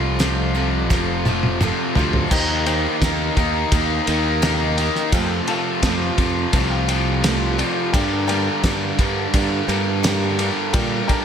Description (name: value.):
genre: classic rock.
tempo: 85 BPM.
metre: 4/4.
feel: straight.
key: unclear.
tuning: A4 = 441 Hz.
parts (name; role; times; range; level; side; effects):
picked steel-string acoustic guitar; accompaniment; 0.0-11.2 s; G2 to C5; -29 LUFS; right 7 dB; slapback echo.
crunchy overdriven guitar; riff; 0.0-11.2 s; F2 to Eb4; -23 LUFS; left 9 dB; slapback echo.
raw garage guitar; riff; 0.0-11.2 s; F2 to Eb4; -25 LUFS; right 10 dB; overdrive.
modern bright fingered electric bass; bass; 0.0-11.0 s; F1 to Bb2; -23 LUFS; equal; none.
cloth-damped thuddy drum kit; drums; 0.2-11.2 s; crash cymbal, hi-hat, kick drum, ride cymbal, snare drum, toms; -22 LUFS; equal; none.
bright upright piano; accompaniment; 2.3-11.2 s; A4 to C6; -31 LUFS; left 5 dB; slapback echo.
room: moderate lush hall reverb, RT60 1.6 s, studio reverb.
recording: big arena sound.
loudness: -17 LUFS.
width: side -8 dB against mid.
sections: 0.0-2.3 A section; 2.3-11.2 B section.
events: drum fill 0.9-2.3; upright piano fill 5.8-7.9.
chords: 0.0 F; 2.3 Eb6; 5.1 Fadd9; 7.9 Gm.